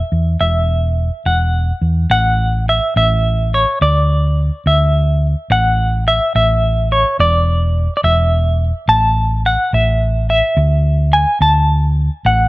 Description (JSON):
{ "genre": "indie folk with a building arrangement", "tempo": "71 BPM (dotted quarters)", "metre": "6/8", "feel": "straight", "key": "A major", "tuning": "A4 = 438 Hz", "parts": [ { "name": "semi-hollow electric guitar", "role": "melody", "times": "0.0-12.5 s", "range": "C#5 to A5", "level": "-16 LUFS", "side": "equal", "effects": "tremolo" }, { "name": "hollow-body short-scale fingered electric bass", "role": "bass", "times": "0.1-12.5 s", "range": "E1 to E2", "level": "-14 LUFS", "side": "equal", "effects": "none" } ], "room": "little or no reverb", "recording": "none", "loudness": "-12 LUFS", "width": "side -20 dB against mid", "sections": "0.0-2.1 A section; 2.1-12.5 B section", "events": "none", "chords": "0.0 Esus2; 2.1 A5; 3.8 Dsus2; 5.5 A5; 7.2 Dsus2/E; 8.9 A5; 10.6 D5" }